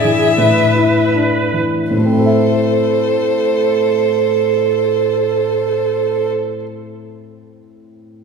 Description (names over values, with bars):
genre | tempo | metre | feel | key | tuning
classical, slow romantic movement for piano quintet | 40 BPM | 3/4 | rubato | A minor | A4 = 440 Hz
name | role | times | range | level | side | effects
rich violin | melody | 0.0-6.3 s | C5 to E5 | -19 LUFS | left 5 dB | none
rich viola | accompaniment | 0.0-6.3 s | G#4 to B4 | -17 LUFS | right 9 dB | none
warm grand piano | accompaniment | 0.0-8.2 s | A2 to E5 | -17 LUFS | left 2 dB | none
room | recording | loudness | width
wet church reverb, RT60 2.7 s | recorded in a church or concert hall | -12 LUFS | side -5 dB against mid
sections
0.0-1.9 A section; 1.9-6.5 B section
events
slowing down 0.0-1.9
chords
0.0 E7/A; 1.9 Am